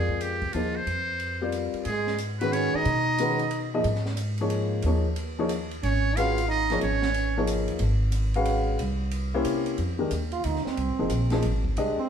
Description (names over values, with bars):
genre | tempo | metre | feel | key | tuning
modal jazz | 182 BPM | 3/4 | swing 64% on 8ths | G# dorian | A4 = 442 Hz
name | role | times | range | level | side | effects
trumpet with metal mute | melody | 0.0-3.7, 5.8-7.4 s | F4 to E#5 | -29 LUFS | right 2 dB | none
warm baby grand piano | accompaniment | 0.0-12.0 s | D#3 to E#5 | -28 LUFS | left 3 dB | none
upright bass | bass | 0.0-12.0 s | F1 to C3 | -28 LUFS | equal | none
compact cocktail drum kit | drums | 0.1-11.9 s | hi-hat, kick drum, ride cymbal, snare drum | -38 LUFS | right 1 dB | none
warm trombone | second line | 1.9-3.7, 5.8-7.4, 10.3-12.1 s | G#3 to F4 | -30 LUFS | right 5 dB | none
room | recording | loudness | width
moderate large studio reverb, RT60 1.1 s | band playing live in one room | -24 LUFS | side -8 dB against mid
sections
0.0-1.9 A section; 1.9-9.8 B section; 9.8-12.1 C section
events
trombone solo 9.8-12.1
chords
0.0 Abadd9; 1.9 G#m69; 5.8 C#/G#; 8.8 C7b9; 9.8 Fm11